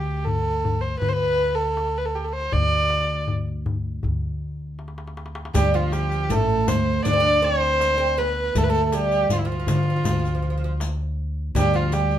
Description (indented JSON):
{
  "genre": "Turkish makam ensemble",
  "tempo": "80 BPM",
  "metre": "4/4",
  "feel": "straight",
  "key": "D makam huseyni",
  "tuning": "A4 = 444 Hz",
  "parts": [
    { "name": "warm kamancheh", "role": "melody", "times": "0.0-12.2 s", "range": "E4-31c to D5", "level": "-23 LUFS", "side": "right 1 dB", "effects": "none" },
    { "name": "upright bass", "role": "bass", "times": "0.0-12.2 s", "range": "A1 to D3", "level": "-25 LUFS", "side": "equal", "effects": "none" },
    { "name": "darbuka", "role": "percussion", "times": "0.3-12.1 s", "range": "none", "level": "-28 LUFS", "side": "left 2 dB", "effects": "none" },
    { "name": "oud", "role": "second line", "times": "5.5-12.2 s", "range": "F3 to D4", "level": "-25 LUFS", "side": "right 3 dB", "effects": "none" },
    { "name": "riq", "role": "percussion", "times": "5.5-12.2 s", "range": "none", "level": "-32 LUFS", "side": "left 4 dB", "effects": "none" }
  ],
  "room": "moderate studio reverb, RT60 0.6 s",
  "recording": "none",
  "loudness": "-20 LUFS",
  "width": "side -10 dB against mid",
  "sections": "0.0-5.5 A section; 5.5-12.2 B section",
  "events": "drum fill 4.8-5.5",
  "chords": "none"
}